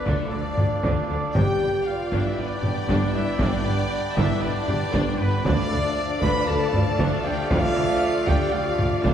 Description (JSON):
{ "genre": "cinematic, epic orchestral film score", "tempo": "117 BPM", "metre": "4/4", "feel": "straight", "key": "D dorian", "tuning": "A4 = 440 Hz", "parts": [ { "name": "rich symphonic violin section", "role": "melody", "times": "0.0-9.1 s", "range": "A4 to B5", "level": "-36 LUFS", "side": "left 2 dB", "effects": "none" }, { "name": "rich studio violin section", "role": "second line", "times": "0.0-9.1 s", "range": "D5 to G5", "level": "-34 LUFS", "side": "left 2 dB", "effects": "none" }, { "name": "warm symphonic viola section", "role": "accompaniment", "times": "0.0-9.1 s", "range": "D4 to D5", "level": "-33 LUFS", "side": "right 1 dB", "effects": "none" }, { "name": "clear trombone section", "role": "sustained chords", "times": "0.0-9.1 s", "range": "D3 to D4", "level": "-33 LUFS", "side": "right 2 dB", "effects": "none" }, { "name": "mellow French horn section", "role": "sustained chords", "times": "0.0-9.1 s", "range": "A3 to B4", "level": "-28 LUFS", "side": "left 1 dB", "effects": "none" }, { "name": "warm woodwind section", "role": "sustained chords", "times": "0.0-9.1 s", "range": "D4 to D5", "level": "-33 LUFS", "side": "right 1 dB", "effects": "none" }, { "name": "warm trumpet", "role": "stabs", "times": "0.0-9.1 s", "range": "A4 to B5", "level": "-31 LUFS", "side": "equal", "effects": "none" }, { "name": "mellow tuba", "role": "bass", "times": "0.1-9.1 s", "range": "G1 to D2", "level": "-31 LUFS", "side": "right 1 dB", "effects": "none" }, { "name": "rich symphonic cello section", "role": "bass", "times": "0.1-9.1 s", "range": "D2 to D3", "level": "-30 LUFS", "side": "right 1 dB", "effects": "none" }, { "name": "rich symphonic double bass section", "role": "bass", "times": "0.1-9.1 s", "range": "G1 to D2", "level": "-29 LUFS", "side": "right 1 dB", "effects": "none" }, { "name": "taiko ensemble", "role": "drums", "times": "0.1-9.1 s", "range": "none", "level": "-27 LUFS", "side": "equal", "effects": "none" }, { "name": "timpani", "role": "percussion", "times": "5.5-6.2 s", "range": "D3", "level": "-33 LUFS", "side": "right 1 dB", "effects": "none" } ], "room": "wet scoring stage reverb, RT60 1.8 s", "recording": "heard from further back in the room", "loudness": "-20 LUFS", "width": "side -9 dB against mid", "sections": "0.0-9.1 A section", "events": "none", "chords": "0.0 Dm; 1.4 G; 5.5 Dm" }